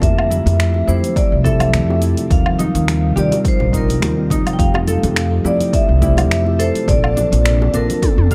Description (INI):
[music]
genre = sunset chillout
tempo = 105 BPM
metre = 4/4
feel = swing 55% on 16ths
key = F major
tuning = A4 = 440 Hz
[part]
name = vibraphone with medium mallets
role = melody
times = 0.0-8.3 s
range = A4 to G5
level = -24 LUFS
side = equal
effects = delay, shimmer reverb
[part]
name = mellow tine electric piano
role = accompaniment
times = 0.0-8.3 s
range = F3 to Bb4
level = -24 LUFS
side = equal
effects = tape echo, shimmer reverb
[part]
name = ethereal airy pad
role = sustained chords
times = 0.0-8.3 s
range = C3 to E5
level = -28 LUFS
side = equal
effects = none
[part]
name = Celtic harp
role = arpeggios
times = 0.0-8.3 s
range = D4 to A5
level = -30 LUFS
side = equal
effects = tape echo, shimmer reverb
[part]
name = upright bass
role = bass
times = 0.0-8.3 s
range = Bb1 to F2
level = -19 LUFS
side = equal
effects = none
[part]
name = deep house drum kit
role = drums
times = 0.0-8.3 s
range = cabasa, finger snaps, hi-hat, toms, woodblock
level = -26 LUFS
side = equal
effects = overdrive
[part]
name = electronic kick drum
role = drums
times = 0.0-8.3 s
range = none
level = -20 LUFS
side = equal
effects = overdrive
[part]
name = bongos and congas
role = percussion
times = 0.0-8.3 s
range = none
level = -30 LUFS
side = equal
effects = none
[sound]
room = light reverb, studio ambience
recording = dark, warm production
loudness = -16 LUFS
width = mono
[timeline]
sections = 0.0-8.3 A section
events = drum fill 8.0-8.3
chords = 0.0 Fmaj7; 2.3 Eb69; 4.6 Fmaj7; 6.9 Bbmaj7